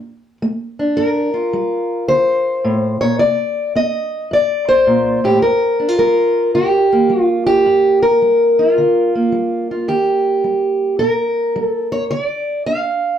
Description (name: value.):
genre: acoustic country blues, solo or duo.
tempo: 108 BPM.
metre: 4/4.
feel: swing 66% on 8ths.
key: G minor.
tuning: A4 = 440 Hz.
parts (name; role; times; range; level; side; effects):
fingerpicked steel-string acoustic guitar; solo; 0.0-13.2 s; G2 to F5; -13 LUFS; equal; none.
room: moderate studio reverb, RT60 0.6 s.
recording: heard from further back in the room.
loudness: -13 LUFS.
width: side -9 dB against mid.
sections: 1.0-13.2 A section.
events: none.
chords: 0.0 D5; 1.0 Gm9; 3.2 Cm9; 5.4 Gm7; 9.9 Eb; 12.1 Dm.